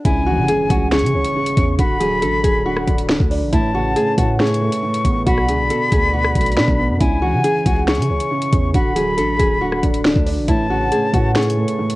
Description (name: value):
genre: hip hop, drill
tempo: 138 BPM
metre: 4/4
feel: half-time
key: C# phrygian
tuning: A4 = 440 Hz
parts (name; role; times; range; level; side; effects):
- nylon-string guitar; melody; 0.0-12.0 s; D4 to A4; -22 LUFS; equal; low-pass filter, cassette tape
- felt-muted upright piano; accompaniment; 0.0-12.0 s; A2 to D5; -23 LUFS; right 2 dB; low-pass filter, cassette tape
- silver concert flute; second line; 0.1-12.0 s; G#5 to C#6; -22 LUFS; left 2 dB; cassette tape, analog delay
- dark French horn section; sustained chords; 0.1-12.0 s; C#3 to D5; -29 LUFS; left 1 dB; cassette tape
- long sustained 808-style bass; bass; 0.1-11.7 s; D1 to C#3; -22 LUFS; equal; none
- drill drum kit; drums; 0.1-12.0 s; finger snaps, hi-hat, kick drum, rim click, snare drum; -19 LUFS; equal; none
- impact; sound effects; 0.1-1.8 s; none; -31 LUFS; equal; none
room: studio reverb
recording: home recording on cassette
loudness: -15 LUFS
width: side -18 dB against mid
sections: 0.0-12.0 A section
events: impact 0.0-1.8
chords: 0.0 C#m; 1.8 D; 3.5 Aadd9; 5.3 Bm7; 7.0 C#m; 8.7 D; 10.5 Aadd9